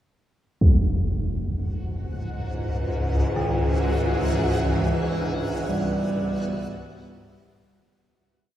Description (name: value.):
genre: dark ambient drone.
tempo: 65 BPM.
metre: 4/4.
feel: straight.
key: unclear.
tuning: A4 = 440 Hz.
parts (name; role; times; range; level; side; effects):
granular cloud pad; sustained chords; 2.5-8.0 s; G3 to E5; -32 LUFS; right 1 dB; built-in reverb.
swarming drone; drone; 1.6-8.1 s; C#2 to G#2; -26 LUFS; equal; built-in reverb.
impact; percussion; 0.6-0.8 s; none; -23 LUFS; equal; low-pass filter on sfx.
backwards swelling texture; texture; 1.9-8.0 s; F#4 to F#5; -35 LUFS; left 1 dB; built-in reverb.
gamelan-type bronze metallophone; arpeggios; 3.4-8.6 s; D#3 to D4; -33 LUFS; left 1 dB; none.
breathy bass clarinet; melody; 4.3-7.1 s; E3 to G3; -28 LUFS; right 1 dB; none.
room: wet cathedral reverb, RT60 7.0 s.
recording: small room ambience.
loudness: -22 LUFS.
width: side -12 dB against mid.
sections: 0.6-8.0 A section.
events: fade-in on ambient pad 0.6-8.0; fade-in on synth texture 0.6-8.0; fade-out on bronze metallophone 0.6-8.0; filter sweep on synth drone 0.6-8.0; fade-out 4.3-8.0.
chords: 0.6 C#m; 4.3 Em.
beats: | 0.61 1.53 2.45 3.38 | 4.30 5.22 6.14 7.07.